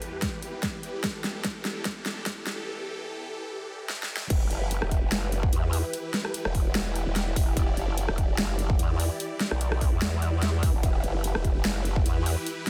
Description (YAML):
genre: heavy wobble dubstep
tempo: 147 BPM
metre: 4/4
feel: swing 54% on 16ths, half-time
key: E minor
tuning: A4 = 439 Hz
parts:
  - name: supersaw chords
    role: sustained chords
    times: 0.0-12.7 s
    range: E2 to D5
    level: -38 LUFS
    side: equal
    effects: phaser, sidechain pumping
  - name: big-room dance drum kit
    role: drums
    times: 0.0-12.7 s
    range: crash cymbal, hi-hat, rim click, snare drum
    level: -34 LUFS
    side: equal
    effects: none
  - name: electronic kick drum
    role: drums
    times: 0.2-12.0 s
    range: none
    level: -29 LUFS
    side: equal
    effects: none
  - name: growl bass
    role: bass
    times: 4.3-12.4 s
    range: E1 to E2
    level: -30 LUFS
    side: equal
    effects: chorus, overdrive
room: light reverb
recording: dense, heavily limited modern master, high-pass filter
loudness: -28 LUFS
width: mono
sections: 0.0-4.3 A section; 4.3-12.7 B section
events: build-up 0.0-4.3; drum fill 0.0-2.7, 3.9-4.3; filter sweep 0.0-4.3; break 2.7-4.3; drop 4.3-12.7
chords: 0.0 Em